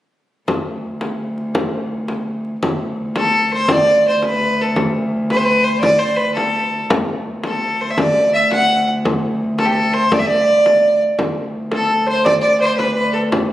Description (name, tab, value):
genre	medieval dance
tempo	112 BPM (dotted quarters)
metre	6/8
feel	straight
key	unclear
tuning	A4 = 442 Hz
part	warm viola da gamba	drone	0.5-13.5 s	D2	-23 LUFS	equal	none
part	frame drum	percussion	0.5-13.5 s	none	-21 LUFS	left 1 dB	none
part	rich fiddle	melody	3.2-13.2 s	G4 to F#5	-15 LUFS	equal	none
part	Celtic harp	second line	11.7-13.5 s	A4 to D5	-20 LUFS	equal	none
room	wet recital hall reverb, RT60 1.5 s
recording	recorded on a phone in the room, club reverb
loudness	-14 LUFS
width	side -13 dB against mid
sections	0.5-2.6 A section; 2.6-11.2 B section; 11.2-13.5 B section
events	none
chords	none